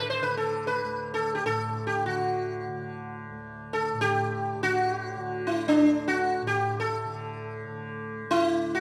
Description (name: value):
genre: indian classical, Hindustani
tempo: free time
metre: none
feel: none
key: D raga khamaj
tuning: A4 = 439 Hz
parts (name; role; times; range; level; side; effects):
- sitar; melody; 0.0-8.8 s; D4 to C5; -28 LUFS; equal; none
- tanpura; drone; 0.0-8.8 s; D2 to D3; -38 LUFS; equal; none
room: moderate recital hall reverb, RT60 1.6 s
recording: none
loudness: -28 LUFS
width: mono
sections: 0.0-8.8 A section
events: none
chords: none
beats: free time